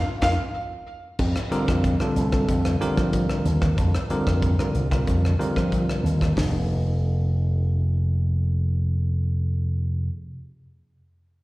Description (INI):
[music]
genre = electric jazz fusion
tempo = 93 BPM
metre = 4/4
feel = straight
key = unclear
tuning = A4 = 441 Hz
[part]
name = bell-like tine electric piano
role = accompaniment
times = 0.2-10.1 s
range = C3 to Bb4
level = -27 LUFS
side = equal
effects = fast stereo tremolo
[part]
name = slap bass with an envelope filter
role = bass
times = 0.2-10.1 s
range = F1 to F3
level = -22 LUFS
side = equal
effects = none
[part]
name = crisp fusion drum kit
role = drums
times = 0.2-6.5 s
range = crash cymbal, hi-hat, kick drum, rim click, snare drum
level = -26 LUFS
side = equal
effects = none
[sound]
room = little or no reverb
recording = live gig heard through the venue's PA, recital hall reverb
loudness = -21 LUFS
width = side -20 dB against mid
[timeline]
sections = 0.0-1.2 A section; 1.2-6.4 B section; 6.4-9.0 C section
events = drum fill 0.0-1.2; band accent 0.0-1.2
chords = 0.0 F7sus4; 1.2 Fsus4; 6.4 Fm